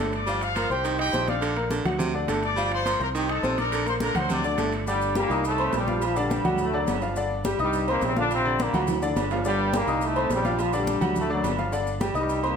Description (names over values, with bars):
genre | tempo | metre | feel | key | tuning
latin, salsa | 210 BPM | 4/4 | straight | G minor | A4 = 440 Hz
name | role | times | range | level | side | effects
edgy baritone saxophone | second line | 0.0-4.7 s | C3 to G3 | -30 LUFS | right 4 dB | none
bright concert grand piano | accompaniment | 0.0-12.6 s | D3 to Eb6 | -27 LUFS | left 2 dB | none
fingered electric bass | bass | 0.0-12.5 s | G1 to D2 | -31 LUFS | equal | none
bright trumpet section | melody | 0.1-4.7 s | G4 to D6 | -28 LUFS | left 1 dB | none
congas | percussion | 0.1-12.6 s | none | -33 LUFS | left 1 dB | none
maracas | percussion | 0.1-12.4 s | none | -44 LUFS | left 4 dB | none
timbales and agogo bells | percussion | 0.1-12.6 s | none | -33 LUFS | right 6 dB | none
bright trombone section | melody | 4.9-12.6 s | F#2 to F4 | -27 LUFS | left 1 dB | none
room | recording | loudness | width
wet large studio reverb, RT60 1.3 s | none | -22 LUFS | side -6 dB against mid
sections
0.0-4.9 A section; 4.9-12.6 B section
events
drum fill 8.9-9.4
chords
0.3 Gm7; 0.8 Cm; 1.4 Bb; 2.0 D7; 2.6 Gm7; 3.1 Cm; 3.7 Bb; 4.3 D7; 4.9 Gm; 5.4 Cm; 6.0 Bb; 6.6 D; 7.2 G5; 7.7 Cm; 8.3 Bb; 8.9 D; 9.4 Gm; 10.0 Cm; 10.6 Bb; 11.2 D; 11.7 G5